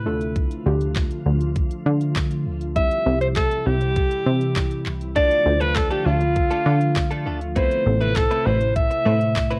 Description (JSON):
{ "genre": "dance-pop", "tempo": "100 BPM", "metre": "4/4", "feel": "straight", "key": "D dorian", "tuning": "A4 = 440 Hz", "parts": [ { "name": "clear alto saxophone", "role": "melody", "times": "0.0-9.6 s", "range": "F4 to E5", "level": "-24 LUFS", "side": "equal", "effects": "cassette tape, analog delay" }, { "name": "glassy FM pad", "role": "sustained chords", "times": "0.0-9.6 s", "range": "C3 to F4", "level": "-33 LUFS", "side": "equal", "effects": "ensemble chorus, built-in reverb, sidechain pumping" }, { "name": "plucky analog bass", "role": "bass", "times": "0.0-9.6 s", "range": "A1 to D3", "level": "-24 LUFS", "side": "equal", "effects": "sidechain pumping" }, { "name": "soft round pluck", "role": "accompaniment", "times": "0.1-8.5 s", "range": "G3 to C5", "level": "-32 LUFS", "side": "equal", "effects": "chorus" }, { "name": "pop drum kit", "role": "drums", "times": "0.2-9.6 s", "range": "handclaps, hi-hat, kick drum, snare drum", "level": "-26 LUFS", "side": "equal", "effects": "cassette tape" }, { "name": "direct-recorded clean electric guitar", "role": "riff", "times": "5.2-9.6 s", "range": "A3 to B4", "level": "-32 LUFS", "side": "equal", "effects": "analog chorus" } ], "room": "light reverb", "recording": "home recording on cassette", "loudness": "-21 LUFS", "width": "mono", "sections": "0.0-9.6 A section", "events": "none", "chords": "0.1 Dm; 2.8 C; 5.2 Dm; 7.6 Amadd9", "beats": "| 0.36 0.96 1.56 2.16 | 2.76 3.36 3.96 4.56 | 5.16 5.76 6.36 6.96 | 7.56 8.16 8.76 9.36" }